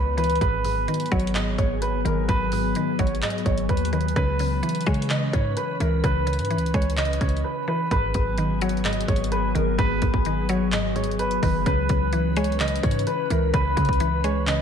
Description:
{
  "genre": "hip hop, trap",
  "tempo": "128 BPM",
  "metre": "4/4",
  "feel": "half-time",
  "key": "G# minor",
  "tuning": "A4 = 440 Hz",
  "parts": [
    { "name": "dark baby grand piano", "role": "melody", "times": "0.0-14.6 s", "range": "A#4 to D#5", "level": "-27 LUFS", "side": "right 1 dB", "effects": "lush chorus, tape echo" },
    { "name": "mallet-like synth pluck", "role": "accompaniment", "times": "0.0-14.6 s", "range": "G#2 to G#3", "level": "-28 LUFS", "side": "left 1 dB", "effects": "chorus" },
    { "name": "glassy FM pad", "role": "sustained chords", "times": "0.0-14.6 s", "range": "E3 to B4", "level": "-29 LUFS", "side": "left 3 dB", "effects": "ensemble chorus, built-in reverb" },
    { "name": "hard-hitting 808-style bass", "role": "bass", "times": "0.0-14.6 s", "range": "F#1 to C#3", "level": "-26 LUFS", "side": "equal", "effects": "none" },
    { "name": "trap drum kit", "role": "drums", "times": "0.2-14.6 s", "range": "handclaps, hi-hat, kick drum", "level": "-27 LUFS", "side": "equal", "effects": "none" }
  ],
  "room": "moderate lush hall reverb, RT60 1.8 s",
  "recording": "dreamy mix soaked in reverb",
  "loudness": "-21 LUFS",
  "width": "side -7 dB against mid",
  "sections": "0.0-7.9 A section; 7.9-14.6 B section",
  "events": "break 7.4-7.9",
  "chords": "0.4 G#m7; 4.2 C#m7; 7.9 G#m7; 11.7 C#m7",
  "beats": "| 0.41 0.88 1.35 1.82 | 2.29 2.76 3.22 3.69 | 4.16 4.63 5.10 5.57 | 6.04 6.51 6.97 7.44 | 7.91 8.38 8.85 9.32 | 9.79 10.26 10.72 11.19 | 11.66 12.13 12.60 13.07 | 13.54 14.01 14.47"
}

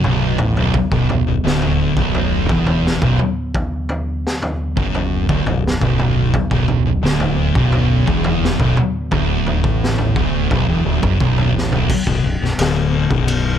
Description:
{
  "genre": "stoner and doom metal",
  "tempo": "86 BPM",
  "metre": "4/4",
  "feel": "straight",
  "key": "B minor",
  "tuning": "A4 = 440 Hz",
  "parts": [
    { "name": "deep rumbling drone", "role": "sustained chords", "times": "0.0-13.6 s", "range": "D3 to B3", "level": "-28 LUFS", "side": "right 1 dB", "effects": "none" },
    { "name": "thick fuzz guitar", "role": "riff", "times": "0.0-13.6 s", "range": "B1 to A2", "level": "-20 LUFS", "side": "left 8 dB", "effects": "distortion" },
    { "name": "thick fuzz guitar", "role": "riff", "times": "0.0-11.9 s", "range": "B1 to A2", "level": "-19 LUFS", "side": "right 9 dB", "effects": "distortion" },
    { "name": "growling fingered electric bass", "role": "bass", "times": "0.0-13.6 s", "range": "B0 to A1", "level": "-22 LUFS", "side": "equal", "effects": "overdrive" },
    { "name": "raw garage drum kit", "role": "drums", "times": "0.0-13.4 s", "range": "crash cymbal, kick drum, ride cymbal, snare drum, toms", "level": "-20 LUFS", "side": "equal", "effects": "none" }
  ],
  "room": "light reverb, small room ambience",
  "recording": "dark, warm production",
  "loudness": "-15 LUFS",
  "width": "side -9 dB against mid",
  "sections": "0.0-11.9 A section; 11.9-13.6 B section",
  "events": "drum fill 0.0-0.7, 11.6-11.9",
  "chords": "0.0 Bm",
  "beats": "0.04 | 0.74 1.44 2.14 2.84 | 3.54 4.24 4.94 5.63 | 6.33 7.03 7.73 8.42 | 9.12 9.81 10.51 11.21 | 11.90 12.59 13.29"
}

